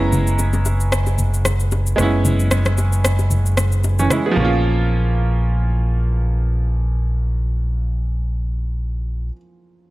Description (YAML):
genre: amapiano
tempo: 113 BPM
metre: 4/4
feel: swing 55% on 16ths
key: Bb minor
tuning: A4 = 440 Hz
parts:
  - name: clear grand piano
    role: accompaniment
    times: 0.0-9.9 s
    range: Fb3 to Bb5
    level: -23 LUFS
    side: right 3 dB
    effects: none
  - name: fingered electric bass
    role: bass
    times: 0.0-9.3 s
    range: Gb1 to Bb1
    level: -18 LUFS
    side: equal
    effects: none
  - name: electronic shaker and rim click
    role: drums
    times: 0.1-4.2 s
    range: none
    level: -24 LUFS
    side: left 1 dB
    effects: overdrive
  - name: congas and bongos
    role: percussion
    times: 0.1-4.6 s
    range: none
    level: -26 LUFS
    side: left 2 dB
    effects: none
room: small room ambience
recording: none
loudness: -16 LUFS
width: side -18 dB against mid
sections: 0.0-4.4 A section; 4.4-8.6 B section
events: kick muted 2.2-4.4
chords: 0.0 Gb9sus4; 4.4 Bbm